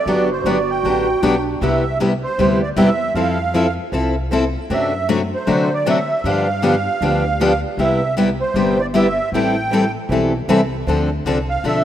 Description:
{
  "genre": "acoustic string swing (jazz manouche)",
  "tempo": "156 BPM",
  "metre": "4/4",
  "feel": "swing 61% on 8ths",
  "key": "C major",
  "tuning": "A4 = 440 Hz",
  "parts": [
    { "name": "musette accordion", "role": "melody", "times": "0.0-11.8 s", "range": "C5 to G5", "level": "-21 LUFS", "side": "right 3 dB", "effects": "none" },
    { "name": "breathy clarinet", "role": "second line", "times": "0.1-1.6 s", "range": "D4 to F#4", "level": "-22 LUFS", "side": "right 3 dB", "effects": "none" },
    { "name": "picked steel-string acoustic guitar", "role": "accompaniment", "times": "0.1-11.8 s", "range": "C3 to A4", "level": "-19 LUFS", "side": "left 4 dB", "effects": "none" },
    { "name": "picked steel-string acoustic guitar", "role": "accompaniment", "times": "0.1-11.8 s", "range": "C3 to A4", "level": "-22 LUFS", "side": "right 4 dB", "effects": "none" },
    { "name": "upright bass", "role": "bass", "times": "0.1-11.8 s", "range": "G1 to D3", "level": "-24 LUFS", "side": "equal", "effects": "none" }
  ],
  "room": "moderate lush hall reverb, RT60 3.0 s",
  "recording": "rough home demo mix",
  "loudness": "-15 LUFS",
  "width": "side -11 dB against mid",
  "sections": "0.0-1.6 A section; 1.6-11.8 B section",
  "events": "none",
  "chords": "0.1 Gmaj7; 1.6 Cmaj7; 3.2 Fmaj7; 4.7 D7/F#; 6.2 G7; 7.8 Cmaj7; 9.3 Am7; 10.9 Dm7"
}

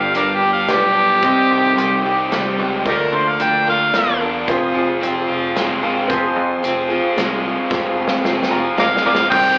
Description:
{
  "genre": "folk rock and heartland rock",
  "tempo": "111 BPM",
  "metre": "3/4",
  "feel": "straight",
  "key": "unclear",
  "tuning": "A4 = 440 Hz",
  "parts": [
    { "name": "overdriven harmonica", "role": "melody", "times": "0.0-4.2, 8.8-9.6 s", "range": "Eb4 to G5", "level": "-15 LUFS", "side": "equal", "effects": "none" },
    { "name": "bright grand piano", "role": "accompaniment", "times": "0.0-9.3 s", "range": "C4 to Bb5", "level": "-25 LUFS", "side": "equal", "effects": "slapback echo" },
    { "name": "picked steel-string acoustic guitar", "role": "accompaniment", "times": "0.0-9.6 s", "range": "G2 to Bb4", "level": "-23 LUFS", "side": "equal", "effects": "slapback echo" },
    { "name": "bright tonewheel organ", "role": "sustained chords", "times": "0.0-9.6 s", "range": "Ab4 to Eb6", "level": "-30 LUFS", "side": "equal", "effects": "none" },
    { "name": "overdriven electric guitar", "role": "riff", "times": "0.0-9.6 s", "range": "F2 to G4", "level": "-20 LUFS", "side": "equal", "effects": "slapback echo" },
    { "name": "picked electric bass", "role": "bass", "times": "0.0-9.5 s", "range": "F1 to F2", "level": "-26 LUFS", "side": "equal", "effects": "none" },
    { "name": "natural country drum kit", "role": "drums", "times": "0.1-9.4 s", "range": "crash cymbal, hi-hat, kick drum, snare drum", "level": "-23 LUFS", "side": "equal", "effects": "none" }
  ],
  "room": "light reverb, small room ambience",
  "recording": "live gig heard through the venue's PA, club reverb, AM radio sound",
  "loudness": "-14 LUFS",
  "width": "side -34 dB against mid",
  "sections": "0.0-6.1 A section; 6.1-9.3 B section",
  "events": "harmonica solo 0.0-6.1; grand piano fill 5.3-6.1, 8.2-9.3; drum fill 7.7-9.3",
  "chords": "0.0 G; 1.2 Cm; 2.9 Bb/D; 4.5 Fm"
}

